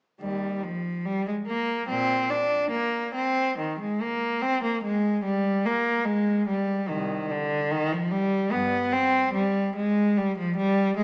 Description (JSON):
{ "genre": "classical, baroque-style suite movement for unaccompanied cello", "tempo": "73 BPM", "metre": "4/4", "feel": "rubato", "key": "unclear", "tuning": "A4 = 440 Hz", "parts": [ { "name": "warm cello", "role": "solo", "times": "0.2-11.0 s", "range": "C2 to D4", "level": "-26 LUFS", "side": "equal", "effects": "none" } ], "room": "wet recital hall reverb, RT60 1.7 s", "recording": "vinyl crackle, small speaker sound", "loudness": "-26 LUFS", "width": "mono", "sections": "0.2-11.0 A section", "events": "none", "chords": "none" }